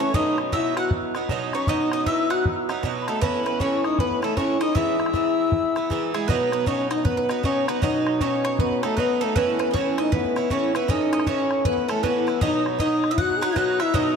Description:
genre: celtic folk, Celtic hornpipe.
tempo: 156 BPM.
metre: 4/4.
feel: swing 63% on 8ths.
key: unclear.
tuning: A4 = 438 Hz.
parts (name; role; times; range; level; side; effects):
mellow French horn; melody; 0.0-14.2 s; G#3 to G#4; -24 LUFS; left 3 dB; analog delay.
bowl-back mandolin; second line; 0.0-14.2 s; G#4 to F#5; -29 LUFS; right 5 dB; none.
breathy hollow mid whistle; second line; 0.0-6.1, 12.4-14.2 s; A5 to G#6; -29 LUFS; left 4 dB; none.
Irish bouzouki; accompaniment; 0.0-14.2 s; G#2 to E4; -27 LUFS; right 6 dB; none.
bodhran; percussion; 0.1-14.1 s; none; -28 LUFS; left 1 dB; none.
room: wet lush hall reverb, RT60 2.2 s.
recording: dreamy mix soaked in reverb.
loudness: -20 LUFS.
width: side -6 dB against mid.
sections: 0.0-6.3 A section; 6.3-14.2 A section.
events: none.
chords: 0.1 B; 3.2 A; 4.8 E; 6.3 B; 9.4 A; 12.4 B.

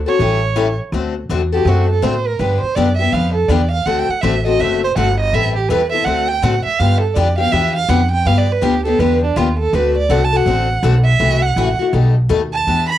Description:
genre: acoustic string swing (jazz manouche).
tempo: 164 BPM.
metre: 4/4.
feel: swing 62% on 8ths.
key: D mixolydian.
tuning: A4 = 440 Hz.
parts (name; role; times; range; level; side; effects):
upright bass; bass; 0.0-13.0 s; F#1 to A2; -17 LUFS; equal; none.
warm violin; melody; 0.1-13.0 s; D4 to B5; -18 LUFS; right 5 dB; none.
picked acoustic archtop guitar; accompaniment; 0.1-12.9 s; B2 to A4; -19 LUFS; left 7 dB; cassette tape.
room: moderate small room reverb, RT60 0.5 s.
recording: home recording on cassette.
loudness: -13 LUFS.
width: side -12 dB against mid.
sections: 0.9-13.0 A section.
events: violin solo 0.9-13.0.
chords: 0.2 A7; 0.9 D7; 2.4 G7; 3.9 D7; 5.3 Am7; 6.1 D7; 6.8 G7; 9.7 D7; 11.2 F#m7b5; 11.9 Baug7.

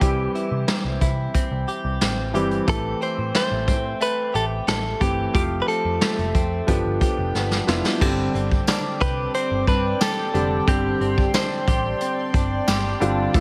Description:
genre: 1980s-style pop.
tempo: 90 BPM.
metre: 4/4.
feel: straight.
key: unclear.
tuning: A4 = 440 Hz.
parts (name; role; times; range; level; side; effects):
direct-recorded clean electric guitar; melody; 0.0-12.3 s; G4 to C5; -28 LUFS; equal; tape echo.
warm grand piano; accompaniment; 0.0-13.4 s; D3 to G4; -29 LUFS; equal; none.
direct-recorded clean electric guitar; riff; 0.0-13.4 s; E3 to G4; -32 LUFS; equal; analog chorus, tape echo.
vintage muted picked electric bass; bass; 0.0-13.4 s; F1 to C3; -29 LUFS; equal; none.
vintage brush drum kit; drums; 0.0-13.4 s; crash cymbal, hi-hat, kick drum, snare drum; -25 LUFS; equal; gated reverb.
chorused pulse-width pad; sustained chords; 8.0-13.4 s; C4 to E6; -32 LUFS; equal; none.
tambourine; percussion; 8.7-12.8 s; none; -38 LUFS; equal; none.
room: light reverb, small room ambience.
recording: none.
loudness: -22 LUFS.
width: mono.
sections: 0.0-8.0 A section; 8.0-13.4 B section.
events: drum fill 7.3-8.0.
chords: 0.0 C; 5.3 Fadd9; 6.7 G7; 8.0 Gsus4.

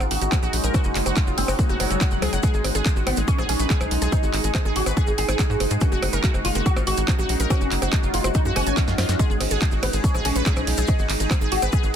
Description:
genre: psychedelic trance.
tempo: 142 BPM.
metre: 4/4.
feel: straight.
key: unclear.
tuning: A4 = 444 Hz.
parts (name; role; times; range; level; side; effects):
overtone-sweeping drone; sustained chords; 0.0-12.0 s; G#3 to D#4; -31 LUFS; equal; chorus, built-in reverb, sidechain pumping.
wide unison pluck; riff; 0.0-11.9 s; E#4 to G#5; -30 LUFS; moving between left 2 dB and right 5 dB; auto-pan, sidechain pumping, dub echo.
tight sequencer bass; bass; 0.0-11.9 s; F#1 to G#2; -25 LUFS; equal; none.
techno drum kit; drums; 0.0-11.8 s; handclaps, hi-hat, percussion blips, ride cymbal, snare drum; -28 LUFS; right 1 dB; none.
maracas; percussion; 0.0-11.9 s; none; -36 LUFS; left 3 dB; none.
ethereal airy pad; texture; 0.0-12.0 s; C#4 to G#5; -32 LUFS; right 1 dB; ensemble chorus, built-in reverb, sidechain pumping.
oud; melody; 0.1-11.8 s; F#3 to G#4; -28 LUFS; left 1 dB; phaser, sidechain pumping, dub echo.
resonant blip pluck; second line; 0.3-10.9 s; G#3 to B3; -43 LUFS; right 4 dB; none.
electronic kick drum; drums; 0.3-11.8 s; none; -22 LUFS; equal; none.
swell; sound effects; 8.8-9.2 s; none; barely audible; none; none.
room: little or no reverb.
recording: dense, heavily limited modern master.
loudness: -19 LUFS.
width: side -8 dB against mid.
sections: 0.0-12.0 A section.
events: drum fill 8.8-9.2.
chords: 0.0 F#5; 2.4 G#5; 5.8 F#5; 9.2 G#5.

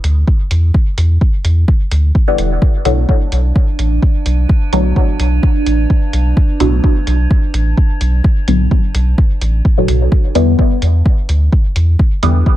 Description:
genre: dub techno.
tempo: 128 BPM.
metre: 4/4.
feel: swing 54% on 16ths.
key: E minor.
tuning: A4 = 441 Hz.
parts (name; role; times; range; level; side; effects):
warm sub bass; bass; 0.0-12.4 s; E1 to E2; -12 LUFS; equal; sidechain pumping.
electronic hi-hat; drums; 0.0-12.3 s; none; -25 LUFS; right 1 dB; none.
electronic kick drum; drums; 0.3-12.6 s; none; -12 LUFS; equal; overdrive.
filtered dub chord stab; stabs; 2.3-12.5 s; A2 to B3; -16 LUFS; left 2 dB; phaser, sidechain pumping, dub echo.
metallic inharmonic drone; texture; 3.3-10.1 s; D4; -24 LUFS; right 6 dB; chorus, built-in reverb, phaser, sidechain pumping.
room: little or no reverb.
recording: echo-heavy mix.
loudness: -11 LUFS.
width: side -14 dB against mid.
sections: 0.0-10.1 A section; 10.1-12.6 A section.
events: none.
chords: 0.0 E7(no3); 2.6 Bm7; 10.1 Em7.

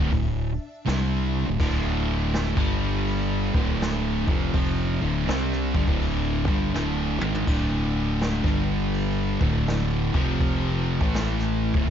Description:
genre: stoner and doom metal.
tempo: 82 BPM.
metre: 4/4.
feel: swing 64% on 8ths.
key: D minor.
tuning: A4 = 440 Hz.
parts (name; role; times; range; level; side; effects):
string machine, violas; sustained chords; 0.0-11.9 s; D3 to A5; -40 LUFS; equal; none.
distorted electric guitar; riff; 0.0-11.9 s; D2 to C4; -31 LUFS; equal; distortion.
thick fuzz guitar; riff; 0.0-11.9 s; D2 to C4; -28 LUFS; left 10 dB; distortion.
thick fuzz guitar; riff; 0.0-11.9 s; D2 to C4; -28 LUFS; right 9 dB; distortion.
fingered electric bass; bass; 0.0-11.9 s; D1 to C2; -29 LUFS; equal; overdrive.
jazz brush drum kit; drums; 0.1-11.9 s; crash cymbal, hi-hat, kick drum, snare drum, toms; -26 LUFS; equal; none.
room: little or no reverb.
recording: dark, warm production, nothing above 7.5 kHz.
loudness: -22 LUFS.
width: side -9 dB against mid.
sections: 0.0-11.9 A section.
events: drum fill 6.7-7.5.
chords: 0.0 D5; 2.5 G5; 3.4 Dm; 8.4 G5; 9.3 D5; 10.0 F5; 11.0 A5.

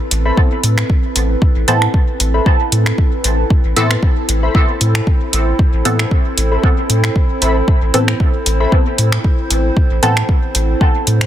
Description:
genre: dub techno.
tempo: 115 BPM.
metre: 4/4.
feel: swing 54% on 16ths.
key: A minor.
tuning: A4 = 440 Hz.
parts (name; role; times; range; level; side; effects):
warbly tape-like pad; sustained chords; 0.0-11.3 s; C4 to C5; -21 LUFS; right 1 dB; chorus, built-in reverb, sidechain pumping.
warm sub bass; bass; 0.1-11.3 s; A1 to A2; -15 LUFS; equal; sidechain pumping.
deep house drum kit; drums; 0.1-11.3 s; finger snaps, hi-hat; -20 LUFS; right 1 dB; soft clipping on snare, dub echo.
warbly lo-fi synth keys; riff; 0.3-8.7 s; A4 to B5; -25 LUFS; left 4 dB; chorus, sidechain pumping, dub echo.
electronic kick drum; drums; 0.4-10.9 s; none; -13 LUFS; equal; none.
filtered dub chord stab; stabs; 1.7-10.3 s; E3 to A4; -20 LUFS; right 1 dB; chorus, phaser, sidechain pumping, dub echo.
room: digital ambience.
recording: dense, heavily limited modern master.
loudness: -12 LUFS.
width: side -11 dB against mid.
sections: 0.0-11.3 A section.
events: none.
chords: 0.0 Amadd9.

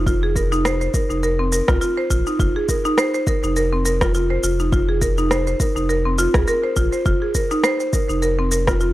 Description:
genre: organic downtempo.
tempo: 103 BPM.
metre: 4/4.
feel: swing 56% on 16ths.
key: F minor.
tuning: A4 = 440 Hz.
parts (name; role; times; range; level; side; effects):
buzzing marimba with medium hard mallets; arpeggios; 0.0-8.9 s; C4 to C5; -20 LUFS; right 1 dB; analog delay.
warm sub bass; bass; 0.0-8.9 s; F1 to C2; -22 LUFS; equal; sidechain pumping.
electronic kick drum; drums; 0.1-8.8 s; none; -22 LUFS; equal; overdrive, studio reverb.
electronic shaker and rim click; drums; 0.1-8.9 s; none; -23 LUFS; equal; overdrive, studio reverb.
room: digital ambience.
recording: dry, gritty hardware recording, transformer saturation.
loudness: -17 LUFS.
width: side -15 dB against mid.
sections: 0.0-8.9 A section.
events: none.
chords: 0.0 F7(no3).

